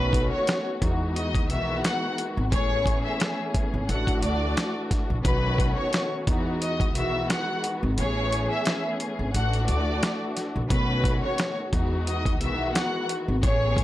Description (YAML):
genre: hip hop, boom-bap hip-hop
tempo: 88 BPM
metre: 4/4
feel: swing 55% on 16ths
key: E major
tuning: A4 = 443 Hz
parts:
  - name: clear studio violin section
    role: melody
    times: 0.0-13.8 s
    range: B4 to F#6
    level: -29 LUFS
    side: left 1 dB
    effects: high-pass filter, low-pass filter, analog delay
  - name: dark studio string section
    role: accompaniment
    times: 0.0-13.8 s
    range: A2 to G#4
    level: -29 LUFS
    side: left 1 dB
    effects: cassette tape, high-pass filter, low-pass filter
  - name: upright bass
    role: bass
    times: 0.0-13.8 s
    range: G#1 to E2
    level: -27 LUFS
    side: equal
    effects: none
  - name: dusty soul sampler-style drum kit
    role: drums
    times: 0.1-13.8 s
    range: hi-hat, kick drum, snare drum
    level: -26 LUFS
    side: equal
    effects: none
room: little or no reverb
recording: dry, gritty hardware recording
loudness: -23 LUFS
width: side -14 dB against mid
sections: 0.0-13.8 A section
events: kick muted 8.0-10.7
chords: 0.0 B7; 0.8 Emaj7; 2.5 Amaj7; 3.9 D/A; 5.2 B7; 6.3 Emaj7; 8.0 Amaj7; 9.3 D/A; 10.7 B7; 11.7 Emaj7